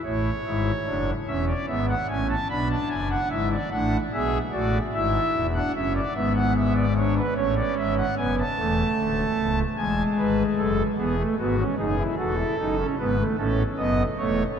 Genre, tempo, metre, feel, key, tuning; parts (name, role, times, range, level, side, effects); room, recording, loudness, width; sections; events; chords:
classical, baroque-style 3-part fugue for pipe organ; 50 BPM (dotted quarters); 12/8; straight; A major; A4 = 439 Hz
pipe organ, foundations; solo; 0.0-14.4 s; C#1 to B5; -22 LUFS; equal
wet huge ambient reverb, RT60 7.0 s; in a vast, echoing space; -22 LUFS; side -8 dB against mid
0.0-14.6 A section
0.0 A; 2.5 Bm7; 4.9 E; 7.4 A; 9.8 F#m7/E